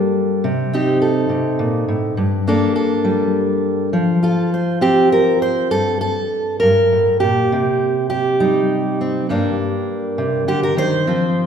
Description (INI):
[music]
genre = folk, solo fingerstyle acoustic guitar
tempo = 68 BPM (dotted quarters)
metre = 6/8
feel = straight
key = G minor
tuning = A4 = 437 Hz
[part]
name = fingerpicked steel-string acoustic guitar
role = solo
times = 0.0-11.5 s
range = G2 to C5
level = -15 LUFS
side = equal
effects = none
[sound]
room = wet recital hall reverb, RT60 1.7 s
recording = recorded in a church or concert hall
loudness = -15 LUFS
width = side -7 dB against mid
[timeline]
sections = 0.0-5.7 A section; 5.7-11.5 B section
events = none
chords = 0.4 Cm; 2.2 Gmadd9; 3.9 F; 5.7 Gmadd9; 7.5 Cm; 9.3 Gm